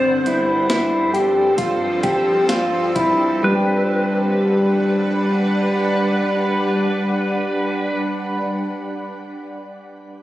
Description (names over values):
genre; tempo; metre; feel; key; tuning
dream pop; 63-70 BPM; 4/4; straight; G major; A4 = 440 Hz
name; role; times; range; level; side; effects
clean lap steel guitar; melody; 0.0-8.0 s; B4 to C5; -25 LUFS; right 1 dB; digital delay
shimmering ambient pad; sustained chords; 0.0-8.0 s; G2 to F#5; -22 LUFS; right 1 dB; chorus, built-in reverb
mellow electric guitar; arpeggios; 0.0-8.5 s; G3 to G4; -18 LUFS; equal; wide subtle chorus, digital delay
clean 12-bit digital drum machine; drums; 0.3-3.2 s; hi-hat, kick drum, snare drum; -23 LUFS; equal; none
room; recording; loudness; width
moderate shimmer reverb, RT60 5.5 s; recorded on a phone in the room, studio reverb; -16 LUFS; side -14 dB against mid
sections
0.0-3.4 A section; 3.4-7.2 B section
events
slowing down 0.0-3.4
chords
0.0 Fmaj7/G; 3.4 Gmaj7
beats
0.70 1.58 2.49 | 3.43 4.38 5.34 6.29